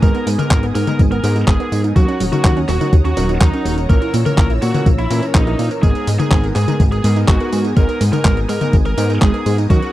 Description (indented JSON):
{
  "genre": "italo disco",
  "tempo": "124 BPM",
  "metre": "4/4",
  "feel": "straight",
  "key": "G# minor",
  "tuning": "A4 = 439 Hz",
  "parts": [
    { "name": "biting lead guitar", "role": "melody", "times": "0.0-9.9 s", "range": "D#4 to A#4", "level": "-24 LUFS", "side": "equal", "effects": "overdrive, tape echo" },
    { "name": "lush unison pad", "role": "sustained chords", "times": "0.0-9.9 s", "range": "B3 to E6", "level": "-28 LUFS", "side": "equal", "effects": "chorus" },
    { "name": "wide unison pluck", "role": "arpeggios", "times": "0.0-9.9 s", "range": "F#3 to A#4", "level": "-23 LUFS", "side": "right 4 dB", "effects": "tape echo" },
    { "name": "clear electric grand piano", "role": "stabs", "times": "0.0-9.9 s", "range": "G#2 to A#4", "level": "-24 LUFS", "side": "equal", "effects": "none" },
    { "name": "chorused synth bass", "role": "bass", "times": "0.0-9.8 s", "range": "D#1 to A#2", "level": "-18 LUFS", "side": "equal", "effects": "none" },
    { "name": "clean 12-bit digital drum machine", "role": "drums", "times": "0.0-9.9 s", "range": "handclaps, hi-hat, tambourine, toms", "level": "-22 LUFS", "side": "left 2 dB", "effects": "none" },
    { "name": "electronic kick drum", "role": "drums", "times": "0.0-9.8 s", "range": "none", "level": "-13 LUFS", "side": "equal", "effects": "none" }
  ],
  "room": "little or no reverb",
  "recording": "dry, close 1970s-style studio recording",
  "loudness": "-13 LUFS",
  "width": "side -15 dB against mid",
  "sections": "0.0-9.9 A section",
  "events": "none",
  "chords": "0.0 G#madd9; 2.0 D#m7; 3.9 A#dim; 5.8 G#madd9",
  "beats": "| 0.03 0.51 0.99 1.48 | 1.96 2.44 2.93 3.41 | 3.90 4.38 4.86 5.35 | 5.83 6.32 6.80 7.28 | 7.77 8.25 8.73 9.22 | 9.70"
}